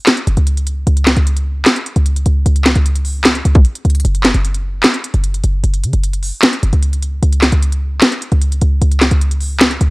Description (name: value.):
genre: hip hop, trap.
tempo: 151 BPM.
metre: 4/4.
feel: half-time.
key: unclear.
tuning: A4 = 439 Hz.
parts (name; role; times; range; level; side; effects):
trap drum kit; drums; 0.1-9.9 s; handclaps, hi-hat, kick drum, snare drum; -13 LUFS; equal; none.
short 808-style bass; bass; 0.3-9.9 s; F#1 to C#3; -13 LUFS; equal; none.
room: little or no reverb.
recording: dry, gritty hardware recording, transformer saturation.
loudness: -12 LUFS.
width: side -24 dB against mid.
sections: 0.0-9.9 A section.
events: none.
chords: none.